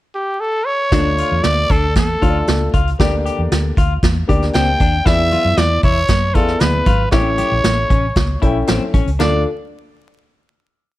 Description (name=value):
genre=uptempo 1960s-style soul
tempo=116 BPM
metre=4/4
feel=straight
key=D harmonic minor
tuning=A4 = 442 Hz
part: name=growling trumpet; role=melody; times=0.1-9.4 s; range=G4 to G5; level=-18 LUFS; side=equal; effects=none
part: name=dark upright piano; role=accompaniment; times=0.9-9.4 s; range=D2 to G5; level=-22 LUFS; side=left 2 dB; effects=none
part: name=electric guitar through a small old amp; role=riff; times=0.9-9.4 s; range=C4 to G4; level=-26 LUFS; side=left 7 dB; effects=none
part: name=vintage muted fingered electric bass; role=bass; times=0.9-9.4 s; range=G#1 to F#2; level=-19 LUFS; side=equal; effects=none
part: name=vintage brush drum kit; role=drums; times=0.9-9.3 s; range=hi-hat, kick drum, snare drum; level=-17 LUFS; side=equal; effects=none
part: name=congas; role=percussion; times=5.3-9.4 s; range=none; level=-26 LUFS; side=equal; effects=none
room=light reverb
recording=vinyl crackle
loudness=-13 LUFS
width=side -16 dB against mid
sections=0.0-0.9 pickup bar; 0.9-9.2 verse; 9.2-11.0 final chord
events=none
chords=0.0 N.C.; 0.9 Dm; 3.0 Gm/D; 5.1 E7; 7.1 A; 9.2 Dm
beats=0.41 | 0.92 1.44 1.96 2.48 | 2.99 3.51 4.03 4.54 | 5.06 5.58 6.09 6.61 | 7.13 7.65 8.16 8.68 | 9.20